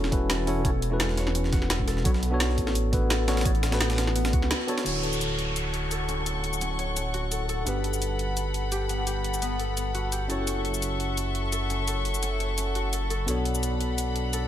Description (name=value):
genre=liquid drum and bass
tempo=171 BPM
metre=4/4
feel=swing 53% on 16ths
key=D major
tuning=A4 = 440 Hz
part: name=tine electric piano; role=accompaniment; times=0.0-14.5 s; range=D3 to F#5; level=-32 LUFS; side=left 1 dB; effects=ping-pong delay
part: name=concert harp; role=arpeggios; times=0.0-14.5 s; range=B3 to C#5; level=-35 LUFS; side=left 2 dB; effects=low-pass filter, digital delay
part: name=dark detuned saw bass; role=bass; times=0.0-14.5 s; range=D1 to C#2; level=-29 LUFS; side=equal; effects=none
part: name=breakbeat sampler-style drum kit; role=drums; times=0.0-4.9 s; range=hi-hat, snare drum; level=-34 LUFS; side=right 1 dB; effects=high-pass filter on snare, studio reverb, high-pass filter on hats
part: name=drum and bass drum kit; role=drums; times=0.0-14.4 s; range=cabasa, crash cymbal, hi-hat, snare drum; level=-32 LUFS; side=equal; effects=overdrive, studio reverb
part: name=electronic kick drum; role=drums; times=0.1-4.4 s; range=none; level=-26 LUFS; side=equal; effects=overdrive, studio reverb
part: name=warm studio string section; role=sustained chords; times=4.9-14.5 s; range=D4 to C#6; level=-33 LUFS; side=left 3 dB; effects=none
part: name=downlifter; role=sound effects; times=4.9-7.7 s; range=none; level=-34 LUFS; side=right 1 dB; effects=none
room=light reverb, digital ambience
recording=none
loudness=-24 LUFS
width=side -11 dB against mid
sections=0.0-4.9 A section; 4.9-14.5 B section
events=break 4.5-4.9; band accent 4.5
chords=0.0 F#m7; 2.1 Bm7; 4.9 Dmaj7; 7.7 Gmaj9; 10.3 F#m7; 13.3 Bm7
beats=0.30 | 0.65 1.00 1.35 1.70 | 2.05 2.40 2.75 3.10 | 3.46 3.81 4.16 4.51 | 4.86 5.21 5.56 5.91 | 6.26 6.61 6.96 7.32 | 7.67 8.02 8.37 8.72 | 9.07 9.42 9.77 10.12 | 10.47 10.82 11.17 11.53 | 11.88 12.23 12.58 12.93 | 13.28 13.63 13.98 14.33